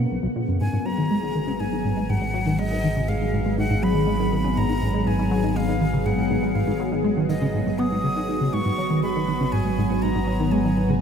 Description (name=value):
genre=ambient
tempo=121 BPM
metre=4/4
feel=straight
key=unclear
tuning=A4 = 444 Hz
part: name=breathy silver concert flute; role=melody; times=0.0-11.0 s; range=Eb5 to Eb6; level=-30 LUFS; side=equal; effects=ping-pong delay
part: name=phased analog pad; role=sustained chords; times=0.0-11.0 s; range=C#3 to Ab4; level=-25 LUFS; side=equal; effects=phaser, chorus
part: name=plucky analog bass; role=riff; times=0.0-10.9 s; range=B1 to Cb4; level=-24 LUFS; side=equal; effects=analog chorus, ping-pong delay
part: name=analog drone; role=bass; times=1.5-11.0 s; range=Ab1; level=-28 LUFS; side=equal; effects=chorus
part: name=bubbling stepped-filter texture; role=texture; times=0.6-11.0 s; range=Eb5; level=-54 LUFS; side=right 9 dB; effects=none
room=wet huge ambient reverb, RT60 8.4 s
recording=dreamy mix soaked in reverb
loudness=-20 LUFS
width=side -7 dB against mid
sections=0.6-11.0 A section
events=none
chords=0.0 Bsus2; 0.6 Abm7